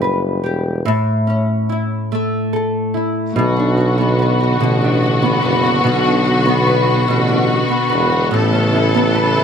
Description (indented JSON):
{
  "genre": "pop",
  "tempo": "48 BPM (dotted quarters)",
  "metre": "6/8",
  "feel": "straight",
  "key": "unclear",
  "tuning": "A4 = 440 Hz",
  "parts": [
    { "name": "nylon-string guitar", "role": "accompaniment", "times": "0.0-9.4 s", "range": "A2 to B4", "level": "-16 LUFS", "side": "equal", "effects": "double-tracked left and right" },
    { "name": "warm tuba", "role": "bass", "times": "0.0-9.4 s", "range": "E1 to B1", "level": "-18 LUFS", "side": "equal", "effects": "none" },
    { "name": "warm studio string section", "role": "sustained chords", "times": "3.3-9.4 s", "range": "C#3 to A4", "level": "-18 LUFS", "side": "left 1 dB", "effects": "none" }
  ],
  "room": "light reverb, studio reverb",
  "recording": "none",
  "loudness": "-14 LUFS",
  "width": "side -7 dB against mid",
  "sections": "0.0-3.4 A section; 3.4-9.4 B section",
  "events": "none",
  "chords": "0.0 G; 0.9 A; 3.4 Bm; 8.3 Aadd9"
}